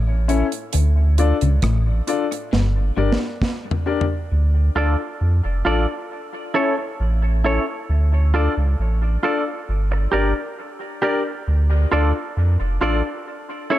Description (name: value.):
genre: dub reggae.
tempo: 67 BPM.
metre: 4/4.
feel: straight.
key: D harmonic minor.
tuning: A4 = 440 Hz.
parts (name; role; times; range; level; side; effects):
clean electric guitar; riff; 0.0-3.1 s; G2 to D3; -24 LUFS; left 3 dB; ensemble chorus.
warm sub bass; bass; 0.0-13.0 s; F1 to F2; -18 LUFS; equal; none.
warm concert grand piano; stabs; 0.3-13.8 s; C#4 to D5; -25 LUFS; left 6 dB; dub echo.
deep reggae drum kit; drums; 0.3-4.2 s; hi-hat, kick drum, rim click, snare drum, toms; -24 LUFS; right 1 dB; none.
semi-hollow electric guitar; accompaniment; 4.8-13.8 s; E4 to D5; -25 LUFS; right 4 dB; dub echo.
room: light reverb, small room ambience.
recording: none.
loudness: -18 LUFS.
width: side -14 dB against mid.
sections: 0.0-4.3 A section; 4.3-13.8 B section.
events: break 0.0-4.3; drum fill 2.5-4.3.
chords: 0.0 A; 0.7 Dm; 2.5 Gm; 4.3 Dm; 6.1 A; 7.9 Dm; 9.7 Gm; 11.5 Dm; 13.3 A.